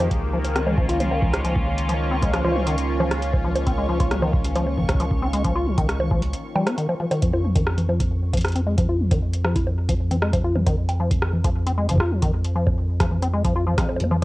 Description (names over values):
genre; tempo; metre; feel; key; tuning
IDM; 135 BPM; 4/4; straight; unclear; A4 = 437 Hz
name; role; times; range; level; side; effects
phased analog pad; sustained chords; 0.0-7.2 s; Eb3 to F4; -28 LUFS; equal; phaser, chorus, cassette tape
deep acid bass; arpeggios; 0.0-14.2 s; F2 to F4; -26 LUFS; left 2 dB; cassette tape, analog delay
warm sub bass; bass; 0.0-14.2 s; Db2 to F2; -24 LUFS; equal; none
booming analog drum machine; drums; 0.0-14.2 s; bongos, congas, hi-hat, rim click; -27 LUFS; equal; none
electronic kick drum; drums; 0.1-13.9 s; none; -24 LUFS; equal; none
backwards swelling texture; texture; 0.7-7.2 s; Db4 to Db6; -37 LUFS; left 1 dB; built-in reverb, cassette tape
room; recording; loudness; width
digital ambience; home recording on cassette; -19 LUFS; side -18 dB against mid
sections
0.0-7.2 A section; 7.2-14.2 A section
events
break 6.3-7.2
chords
0.1 Dbadd9; 7.2 N.C.